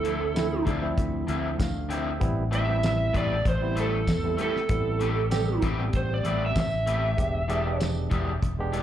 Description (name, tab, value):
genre	straight-eighth soul blues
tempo	97 BPM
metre	4/4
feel	swing 54% on 16ths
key	A minor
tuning	A4 = 440 Hz
part	lead guitar through a small cranked amp	melody	0.0-7.8 s	A4 to E5	-29 LUFS	right 3 dB	overdrive, slapback echo
part	barky tine electric piano	accompaniment	0.0-8.8 s	F3 to G5	-33 LUFS	right 4 dB	auto-pan, slapback echo
part	electric guitar through a small old amp	stabs	0.0-8.8 s	D3 to B4	-33 LUFS	left 4 dB	vibrato effect, slapback echo, tape echo
part	fingered electric bass	bass	0.0-8.8 s	E1 to E2	-28 LUFS	left 1 dB	none
part	cloth-damped thuddy drum kit	drums	0.0-8.8 s	hi-hat, kick drum, snare drum, tambourine	-29 LUFS	equal	none
room	studio reverb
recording	live gig heard through the venue's PA, club reverb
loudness	-24 LUFS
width	side -11 dB against mid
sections	0.0-8.8 A section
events	tine electric piano fill 0.4-2.2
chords	0.0 Dm9; 2.2 Am9; 7.2 E7#9